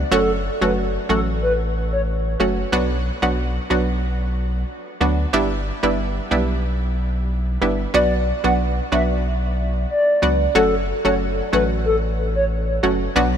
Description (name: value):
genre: dancehall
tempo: 92 BPM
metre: 4/4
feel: straight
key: B minor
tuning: A4 = 440 Hz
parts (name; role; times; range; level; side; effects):
- saturated sub bass; bass; 0.0-13.4 s; F#1 to D2; -23 LUFS; equal; none
- hollow clarinet-like synth lead; melody; 0.1-2.0, 7.9-12.4 s; A4 to F#5; -22 LUFS; equal; chorus, diffuse ambient delay
- analog pluck; accompaniment; 0.1-13.3 s; F#3 to F#4; -21 LUFS; right 1 dB; chorus
room: moderate huge ambient reverb, RT60 7.5 s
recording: dreamy mix soaked in reverb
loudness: -18 LUFS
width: side -8 dB against mid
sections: 0.0-13.4 A section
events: none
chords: 0.1 F#m; 2.7 Bm; 5.3 G6; 7.9 Bm; 10.6 F#m